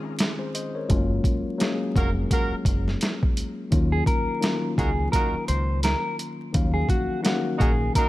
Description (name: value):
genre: hip hop, boom-bap hip-hop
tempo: 85 BPM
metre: 4/4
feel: swing 57% on 16ths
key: unclear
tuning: A4 = 439 Hz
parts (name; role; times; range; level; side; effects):
- mellow tine electric piano; accompaniment; 0.0-8.1 s; Eb3 to F5; -28 LUFS; left 2 dB; high-pass filter, low-pass filter
- boom bap sampler-style drum kit; drums; 0.2-8.1 s; hi-hat, kick drum, snare drum; -24 LUFS; equal; none
- deep dub fingered electric bass; bass; 0.9-7.9 s; F1 to Eb2; -25 LUFS; equal; none
- warm horn section; stabs; 2.0-8.1 s; Bb3 to Bb4; -32 LUFS; right 2 dB; high-pass filter, low-pass filter, ping-pong delay
- clean electric guitar; melody; 3.9-8.1 s; Gb4 to C5; -28 LUFS; equal; wide subtle chorus, high-pass filter, low-pass filter
room: digital ambience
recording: vinyl crackle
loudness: -22 LUFS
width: side -16 dB against mid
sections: 0.0-8.1 A section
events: break 0.0-0.9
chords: 0.0 Dbmaj7; 0.9 Gbmaj7; 3.7 Ebm7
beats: 0.19 | 0.90 1.60 2.31 3.02 | 3.72 4.43 5.13 5.84 | 6.54 7.25 7.96